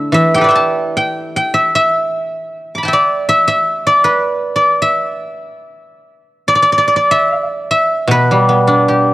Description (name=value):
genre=chinese traditional, Chinese solo plucked strings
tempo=70-81 BPM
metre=2/4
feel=rubato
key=E yu mode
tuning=A4 = 435 Hz
part: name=guzheng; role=solo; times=0.0-9.1 s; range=B2 to D6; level=-11 LUFS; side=equal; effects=none
room=studio reverb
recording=home recording on cassette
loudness=-11 LUFS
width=side -17 dB against mid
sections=0.0-6.5 A section; 6.5-9.1 B section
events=none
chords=none